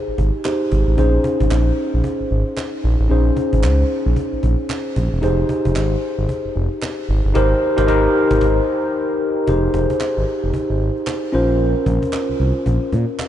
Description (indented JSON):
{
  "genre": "R&B, new jack swing",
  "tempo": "113 BPM",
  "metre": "4/4",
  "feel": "swing 60% on 16ths",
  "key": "Bb dorian",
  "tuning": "A4 = 440 Hz",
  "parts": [
    { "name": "mellow tine electric piano", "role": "accompaniment", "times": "0.0-13.3 s", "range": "Db4 to C5", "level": "-19 LUFS", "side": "left 1 dB", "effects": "wide subtle chorus" },
    { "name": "smooth gliding synth bass", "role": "bass", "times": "0.1-13.1 s", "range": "E1 to Bb2", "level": "-18 LUFS", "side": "equal", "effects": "none" },
    { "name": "cajon", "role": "drums", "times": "0.1-13.3 s", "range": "none", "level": "-28 LUFS", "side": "equal", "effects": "vintage 12-bit sampler grit" },
    { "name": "group handclap", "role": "percussion", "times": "0.5-13.3 s", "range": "none", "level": "-37 LUFS", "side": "right 5 dB", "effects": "none" }
  ],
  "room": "moderate huge ambient reverb, RT60 4.7 s",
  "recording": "dreamy mix soaked in reverb, nothing above 10.8 kHz",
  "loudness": "-16 LUFS",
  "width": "side -11 dB against mid",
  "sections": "0.0-9.5 A section; 9.5-13.3 B section",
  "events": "band accent 7.4-9.5; tine electric piano fill 8.4-9.5",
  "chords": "0.0 Fm9 (rootless); 1.0 Bbm11; 5.2 Fm9; 7.4 Abmaj9; 9.5 Fm7; 11.3 Bbmadd9"
}